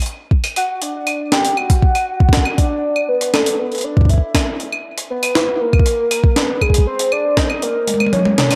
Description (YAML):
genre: IDM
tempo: 119 BPM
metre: 4/4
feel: straight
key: unclear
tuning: A4 = 440 Hz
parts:
  - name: jungle sampler-style drum kit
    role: drums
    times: 0.0-8.6 s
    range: claves, hi-hat, snare drum, toms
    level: -21 LUFS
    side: equal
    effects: overdrive
  - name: electronic kick drum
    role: drums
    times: 0.3-7.5 s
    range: none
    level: -15 LUFS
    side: equal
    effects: overdrive
  - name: warbly nostalgic lead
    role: melody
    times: 0.6-8.6 s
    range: G#4 to G5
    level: -21 LUFS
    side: equal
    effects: subtle chorus, dub echo
room: moderate spring reverb, RT60 2.0 s, digital ambience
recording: echo-heavy mix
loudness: -17 LUFS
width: mono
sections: 0.0-8.6 A section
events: kick drops out 7.6-8.6; drum fill 7.9-8.6; band accent 8.4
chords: none